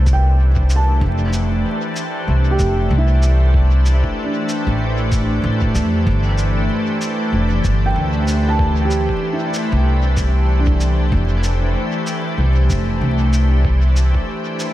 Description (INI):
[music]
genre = ambient dub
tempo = 95 BPM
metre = 4/4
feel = swing 58% on 16ths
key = unclear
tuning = A4 = 440 Hz
[part]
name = soft additive organ-like pad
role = sustained chords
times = 0.0-14.7 s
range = E3 to C5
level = -21 LUFS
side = left 1 dB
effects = ensemble chorus, built-in reverb
[part]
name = felt-muted upright piano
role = arpeggios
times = 0.0-14.7 s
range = D4 to A5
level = -26 LUFS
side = right 3 dB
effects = vintage 12-bit sampler grit, dub echo
[part]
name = upright bass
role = bass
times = 0.0-14.1 s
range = F1 to F2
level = -15 LUFS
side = equal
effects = tube saturation
[part]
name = electronic kick drum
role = drums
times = 0.1-14.3 s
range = none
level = -21 LUFS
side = equal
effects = studio ambience
[part]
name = shaker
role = drums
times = 0.1-14.7 s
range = none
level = -34 LUFS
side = equal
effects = studio ambience, dub echo
[sound]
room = light reverb, small room reverb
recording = echo-heavy mix, vinyl crackle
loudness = -14 LUFS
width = side -14 dB against mid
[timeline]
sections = 0.0-14.7 A section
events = none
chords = 0.0 Fmaj9